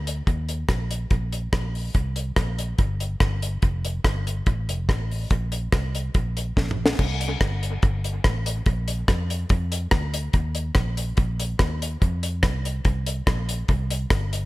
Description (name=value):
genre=ska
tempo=143 BPM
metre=4/4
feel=straight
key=unclear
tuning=A4 = 441 Hz
part: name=vintage muted fingered electric bass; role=bass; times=0.0-14.5 s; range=F1 to F2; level=-26 LUFS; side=equal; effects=none
part: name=deep reggae drum kit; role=drums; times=0.1-14.4 s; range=crash cymbal, hi-hat, kick drum, rim click, snare drum, toms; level=-22 LUFS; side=equal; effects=dub echo
room=little or no reverb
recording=none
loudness=-22 LUFS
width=side -19 dB against mid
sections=0.0-7.0 A section; 7.0-14.5 B section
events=drum fill 6.6-7.0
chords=none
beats=| 0.27 0.69 1.11 1.53 | 1.95 2.37 2.79 3.21 | 3.63 4.05 4.47 4.89 | 5.31 5.73 6.15 6.57 | 6.99 7.41 7.83 8.25 | 8.67 9.09 9.51 9.92 | 10.34 10.76 11.18 11.60 | 12.02 12.44 12.85 13.27 | 13.69 14.11